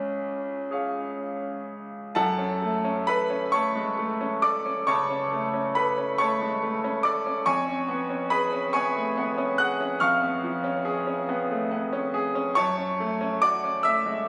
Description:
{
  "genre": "classical, romantic duo for French horn and grand piano",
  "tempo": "41-48 BPM (dotted quarters)",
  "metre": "12/8",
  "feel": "rubato",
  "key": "F# minor",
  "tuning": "A4 = 440 Hz",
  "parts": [
    { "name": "clear French horn", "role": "melody", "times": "0.0-1.7 s", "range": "C#4", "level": "-35 LUFS", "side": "equal", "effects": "none" },
    { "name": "bright concert grand piano", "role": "accompaniment", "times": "0.0-14.3 s", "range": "C#2 to F#6", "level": "-26 LUFS", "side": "equal", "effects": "none" }
  ],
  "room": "wet recital hall reverb, RT60 1.8 s",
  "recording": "recorded on a phone in the room, club reverb",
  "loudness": "-26 LUFS",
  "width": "mono",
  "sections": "0.0-2.2 A section; 2.2-14.3 A section",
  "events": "none",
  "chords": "0.0 C#; 2.2 F#m; 7.5 C#7/E#; 12.6 F#m",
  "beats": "0.72 | 2.17 3.52 4.86 6.19 | 7.46 8.74 10.02 11.29 | 12.57 13.86"
}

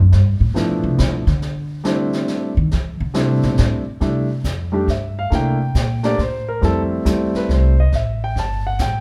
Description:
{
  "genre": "jazz piano trio",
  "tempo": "138 BPM",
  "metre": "3/4",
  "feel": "swing 66% on 8ths",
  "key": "C major",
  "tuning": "A4 = 439 Hz",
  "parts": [
    { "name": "upright bass", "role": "bass", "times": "0.0-9.0 s", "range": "G1 to E3", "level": "-20 LUFS", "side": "equal", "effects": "none" },
    { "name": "jazz brush drum kit", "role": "drums", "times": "0.1-9.0 s", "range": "brushed snare drum, hi-hat, kick drum, snare drum", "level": "-30 LUFS", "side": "equal", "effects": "none" },
    { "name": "clear grand piano", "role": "melody", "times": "0.5-9.0 s", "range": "F3 to A5", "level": "-23 LUFS", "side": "equal", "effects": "none" }
  ],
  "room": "light reverb",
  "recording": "none",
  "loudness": "-19 LUFS",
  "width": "mono",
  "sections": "0.0-4.0 A section; 4.0-9.0 B section",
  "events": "upright bass solo 0.0-4.0",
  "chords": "0.1 G13; 1.4 C69; 5.3 C7sus2; 6.6 Fmaj9; 7.9 Gsus2",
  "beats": "| 0.12 0.55 0.98 | 1.41 1.85 2.28 | 2.71 3.14 3.58 | 4.01 4.44 4.88 | 5.31 5.75 6.18 | 6.61 7.05 7.48 | 7.92 8.35 8.79"
}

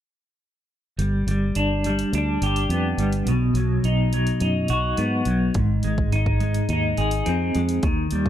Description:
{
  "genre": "psychedelic rock",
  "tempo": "105 BPM",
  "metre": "4/4",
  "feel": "straight",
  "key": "unclear",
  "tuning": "A4 = 441 Hz",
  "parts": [
    { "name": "clean electric guitar", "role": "riff", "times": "1.0-8.3 s", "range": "Ab2 to Ab4", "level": "-22 LUFS", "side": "equal", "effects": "tremolo, double-tracked left and right" },
    { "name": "fingered electric bass", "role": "bass", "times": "1.0-8.3 s", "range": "G1 to Ab2", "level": "-24 LUFS", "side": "equal", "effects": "none" },
    { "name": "punchy analog drum machine", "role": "drums", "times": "1.0-8.3 s", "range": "hi-hat, kick drum", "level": "-29 LUFS", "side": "equal", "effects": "none" }
  ],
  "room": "little or no reverb",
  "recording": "none",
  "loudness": "-20 LUFS",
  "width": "side -11 dB against mid",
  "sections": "1.0-8.3 A section",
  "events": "none",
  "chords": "1.0 G; 3.3 B; 5.6 Ab",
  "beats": "| 0.99 1.56 2.13 2.70 | 3.27 3.84 4.41 4.98 | 5.55 6.12 6.69 7.26 | 7.83"
}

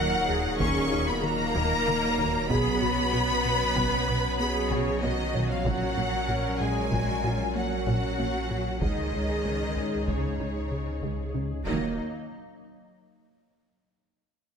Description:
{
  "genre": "cinematic, hybrid orchestral and electronic film score",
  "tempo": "95 BPM",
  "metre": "5/4",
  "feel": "straight",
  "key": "Eb minor",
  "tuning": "A4 = 440 Hz",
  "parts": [
    { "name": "warm symphonic violin section", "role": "melody", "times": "0.0-12.0 s", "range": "C#5 to Db6", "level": "-32 LUFS", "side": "left 4 dB", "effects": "none" },
    { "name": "rich symphonic violin section", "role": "second line", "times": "0.0-12.0 s", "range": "Eb4 to Db6", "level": "-34 LUFS", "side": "left 1 dB", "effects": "none" },
    { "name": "rich symphonic viola section", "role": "accompaniment", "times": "0.0-12.0 s", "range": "Gb3 to B4", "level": "-34 LUFS", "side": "right 1 dB", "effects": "none" },
    { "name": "hollow soft pad", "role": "sustained chords", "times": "0.0-12.0 s", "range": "Eb3 to Eb5", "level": "-37 LUFS", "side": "equal", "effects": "ensemble chorus" },
    { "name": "mellow French horn section", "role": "sustained chords", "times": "0.0-11.9 s", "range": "F#3 to Eb4", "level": "-37 LUFS", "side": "left 2 dB", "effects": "none" },
    { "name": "mellow trombone section", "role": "sustained chords", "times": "0.0-11.9 s", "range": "Ab2 to Ab3", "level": "-37 LUFS", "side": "right 3 dB", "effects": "none" },
    { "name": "resonant blip pluck", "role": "arpeggios", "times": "0.0-11.5 s", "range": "Db3 to C#5", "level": "-40 LUFS", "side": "left 1 dB", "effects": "none" },
    { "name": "rubbery square bass", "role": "riff", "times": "0.0-11.5 s", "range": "Db2 to B3", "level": "-33 LUFS", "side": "left 2 dB", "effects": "none" },
    { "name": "pure sine sub bass", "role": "bass", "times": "0.0-12.0 s", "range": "Eb1 to Db2", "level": "-35 LUFS", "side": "equal", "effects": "none" },
    { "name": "rich symphonic cello section", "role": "bass", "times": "0.0-12.0 s", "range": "C#3 to Db4", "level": "-34 LUFS", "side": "right 2 dB", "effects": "none" },
    { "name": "warm studio double bass section", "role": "bass", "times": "0.0-12.0 s", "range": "Bb1 to Eb2", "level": "-36 LUFS", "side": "right 4 dB", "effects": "none" },
    { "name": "taiko ensemble", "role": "drums", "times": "0.6-12.9 s", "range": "none", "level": "-36 LUFS", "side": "equal", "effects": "none" }
  ],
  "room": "moderate scoring stage reverb, RT60 1.6 s",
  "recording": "none",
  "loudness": "-24 LUFS",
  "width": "side -6 dB against mid",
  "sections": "0.0-12.0 A section; 12.0-14.6 B section",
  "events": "none",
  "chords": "0.0 Ebm; 2.5 Bsus2; 5.7 Gb/Bb; 8.8 Dbsus2; 11.7 Ebm; 12.0 N.C.",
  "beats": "0.60 1.23 1.86 | 2.50 3.13 3.76 4.39 5.02 | 5.65 6.29 6.92 7.55 8.18 | 8.81 9.44 10.07 10.71 11.34 | 11.97 12.60"
}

